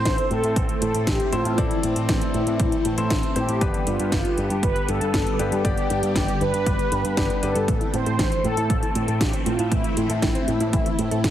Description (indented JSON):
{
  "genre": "italo disco",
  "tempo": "118 BPM",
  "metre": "4/4",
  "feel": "straight",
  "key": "A minor",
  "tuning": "A4 = 440 Hz",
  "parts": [
    { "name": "mellow synth brass", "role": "melody", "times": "0.0-11.3 s", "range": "E4 to C5", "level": "-26 LUFS", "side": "equal", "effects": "chorus, cassette tape, tape echo" },
    { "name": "phased string machine", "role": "sustained chords", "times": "0.0-11.3 s", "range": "D3 to C4", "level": "-30 LUFS", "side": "equal", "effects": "ensemble chorus, phaser" },
    { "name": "clear grand piano", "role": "stabs", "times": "0.0-7.7 s", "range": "B3 to D5", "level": "-30 LUFS", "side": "left 3 dB", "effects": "none" },
    { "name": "picked electric bass with an envelope filter", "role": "bass", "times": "0.0-11.3 s", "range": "G1 to A2", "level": "-26 LUFS", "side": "equal", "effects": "none" },
    { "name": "electronic kick drum", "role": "drums", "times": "0.1-11.3 s", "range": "none", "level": "-26 LUFS", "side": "equal", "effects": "overdrive" },
    { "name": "house drum kit", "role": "drums", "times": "0.1-11.3 s", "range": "hi-hat, snare drum", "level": "-29 LUFS", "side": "equal", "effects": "overdrive" },
    { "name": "warbly dusty pluck", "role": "arpeggios", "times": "7.7-11.3 s", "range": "A3 to C5", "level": "-31 LUFS", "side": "right 4 dB", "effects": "chorus, cassette tape, tape echo" }
  ],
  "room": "moderate plate reverb, RT60 2.0 s",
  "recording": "heavily compressed radio sound",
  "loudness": "-20 LUFS",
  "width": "side -11 dB against mid",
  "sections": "0.0-11.3 A section",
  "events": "none",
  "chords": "0.0 Am; 3.6 G; 7.7 Am"
}